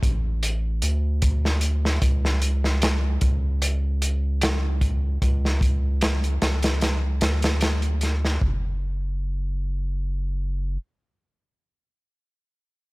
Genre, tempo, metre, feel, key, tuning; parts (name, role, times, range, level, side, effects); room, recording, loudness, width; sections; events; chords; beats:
trip hop; 75 BPM; 4/4; swing 55% on 16ths; A4 = 440 Hz
round analog bass; bass; 0.0-10.8 s; F#1 to D2; -23 LUFS; equal
crunchy breakbeat drum kit; drums; 0.0-8.6 s; hi-hat, kick drum, snare drum; -24 LUFS; equal
little or no reverb; -21 LUFS; side -24 dB against mid
0.0-8.4 A section; 8.4-11.6 B section
0.42 1.22 | 2.02 2.82 3.62 4.42 | 5.22 6.02 6.82 7.62 | 8.42 9.22 10.02